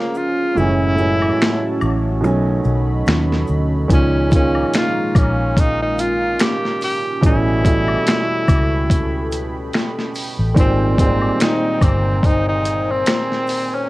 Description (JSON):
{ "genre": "lo-fi hip hop", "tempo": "72 BPM", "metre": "4/4", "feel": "swing 56% on 16ths", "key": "unclear", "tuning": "A4 = 440 Hz", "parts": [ { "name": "breathy tenor saxophone", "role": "melody", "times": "0.0-13.9 s", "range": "Bb3 to G4", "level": "-20 LUFS", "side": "equal", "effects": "low-pass filter" }, { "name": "warm upright piano", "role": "accompaniment", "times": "0.0-13.9 s", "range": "A2 to E4", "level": "-22 LUFS", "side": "right 2 dB", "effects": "low-pass filter" }, { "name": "dark analog pad", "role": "sustained chords", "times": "0.0-13.9 s", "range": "Ab3 to B5", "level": "-27 LUFS", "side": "equal", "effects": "chorus, low-pass filter" }, { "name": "maracas and woodblock", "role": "percussion", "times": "0.1-13.7 s", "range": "none", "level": "-32 LUFS", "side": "left 3 dB", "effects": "none" }, { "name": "vintage muted fingered electric bass", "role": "bass", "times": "0.6-13.0 s", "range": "Gb1 to D#2", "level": "-20 LUFS", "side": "equal", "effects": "none" }, { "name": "boom bap sampler-style drum kit", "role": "drums", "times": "1.4-13.7 s", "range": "finger snaps, hi-hat, kick drum, snare drum", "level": "-17 LUFS", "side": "equal", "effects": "none" } ], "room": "light reverb", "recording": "worn, warbling old tape, cassette tape, warbly pitch drift", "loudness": "-15 LUFS", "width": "side -19 dB against mid", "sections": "0.0-13.9 A section", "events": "break 0.0-3.9; kick muted 0.6-3.9", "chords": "0.0 Bbm7; 0.6 Gbm7; 2.2 B9; 3.9 Db6; 7.2 A9; 10.6 Abmaj9" }